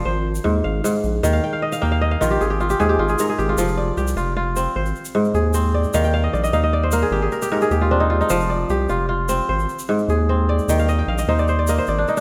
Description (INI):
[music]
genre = west african traditional, West African string and xylophone music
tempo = 102 BPM (dotted quarters)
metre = 12/8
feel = straight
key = unclear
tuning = A4 = 441 Hz
[part]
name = kora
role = arpeggios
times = 0.0-12.2 s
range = Ab2 to G5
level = -22 LUFS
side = equal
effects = none
[part]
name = round analog bass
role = bass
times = 0.0-12.1 s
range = F1 to Eb2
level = -24 LUFS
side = equal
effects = none
[part]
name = tube shaker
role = percussion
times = 0.3-12.2 s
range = none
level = -37 LUFS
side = equal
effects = none
[sound]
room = moderate concert hall reverb, RT60 2.2 s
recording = none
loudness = -20 LUFS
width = mono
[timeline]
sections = 0.0-3.6 A section; 3.6-12.2 B section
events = kora fill 1.3-3.6, 5.9-8.3, 10.7-12.2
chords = 0.1 Ab; 1.2 Eb5; 2.4 Ab5; 3.6 F5; 4.8 Ab; 5.9 Eb5; 7.1 Ab; 8.3 F5; 9.5 Ab; 10.7 Eb5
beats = 0.06 0.64 | 1.23 1.82 2.40 2.99 | 3.58 4.17 4.76 5.35 | 5.94 6.53 7.12 7.72 | 8.31 8.90 9.49 10.09 | 10.68 11.28 11.87